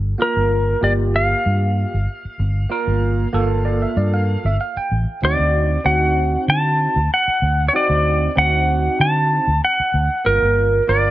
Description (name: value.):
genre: straight-eighth soul blues.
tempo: 95 BPM.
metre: 4/4.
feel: straight.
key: unclear.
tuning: A4 = 444 Hz.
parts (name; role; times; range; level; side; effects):
vintage muted fingered electric bass; bass; 0.0-11.1 s; G1 to D3; -19 LUFS; equal; none.
clean lap steel guitar; melody; 0.2-11.1 s; Bb4 to A5; -18 LUFS; equal; none.
overdriven tine electric piano; accompaniment; 0.2-11.1 s; Bb3 to G5; -23 LUFS; right 3 dB; phaser.
room: little or no reverb.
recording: none.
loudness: -16 LUFS.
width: side -15 dB against mid.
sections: 0.0-11.1 A section.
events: tine electric piano fill 3.3-5.2.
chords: 0.0 Gm7; 5.2 D7b9; 10.3 Gm7.